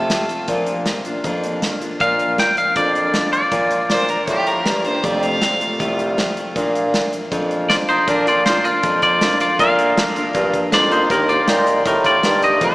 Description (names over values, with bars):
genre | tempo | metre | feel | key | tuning
honky-tonk and classic country | 158 BPM | 4/4 | straight | Bb major | A4 = 439 Hz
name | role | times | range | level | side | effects
bright fiddle | second line | 0.0-0.5, 3.9-6.0 s | G4 to F5 | -24 LUFS | right 1 dB | none
picked steel-string acoustic guitar | accompaniment | 0.0-12.7 s | F2 to G4 | -24 LUFS | equal | none
breathy bassoon | bass | 0.0-12.7 s | C2 to C3 | -21 LUFS | equal | none
natural country drum kit | drums | 0.1-12.7 s | hi-hat, kick drum, snare drum | -24 LUFS | equal | none
twangy electric guitar | melody | 2.0-4.8, 7.7-12.7 s | D4 to G5 | -17 LUFS | equal | none
warm concert grand piano | accompaniment | 8.4-12.5 s | D4 to Bb4 | -27 LUFS | right 2 dB | none
room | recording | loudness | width
wet cathedral reverb, RT60 5.3 s | recorded in a church or concert hall, small speaker sound | -15 LUFS | side -21 dB against mid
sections
0.0-8.1 A section; 8.1-12.7 B section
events
none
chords
0.5 Bb; 5.0 F; 6.6 Bb; 11.1 Eb